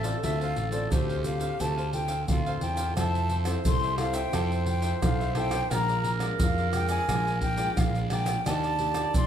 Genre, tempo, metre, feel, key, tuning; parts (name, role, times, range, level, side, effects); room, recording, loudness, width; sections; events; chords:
samba and choro; 87 BPM; 4/4; straight; F major; A4 = 440 Hz
breathy hollow jazz flute; melody; 0.0-9.3 s; C5 to C6; -31 LUFS; left 1 dB
mellow clarinet; second line; 0.0-9.3 s; F4 to D5; -34 LUFS; right 4 dB
cavaquinho; accompaniment; 0.0-9.3 s; D4 to F5; -40 LUFS; right 1 dB
nylon-string guitar; accompaniment; 0.0-9.3 s; A2 to A4; -36 LUFS; left 3 dB
fuzz fingered electric bass; bass; 0.0-9.3 s; A1 to F2; -29 LUFS; equal; overdrive
tube shaker, pandeiro, surdo and tamborim; percussion; 0.0-9.3 s; -30 LUFS; right 1 dB
moderate large studio reverb, RT60 0.9 s; band playing live in one room; -25 LUFS; side -9 dB against mid
0.0-3.0 A section; 3.0-9.3 B section
0.0 Dm7; 3.0 Fmaj7; 5.7 Bb7; 8.5 Ebmaj7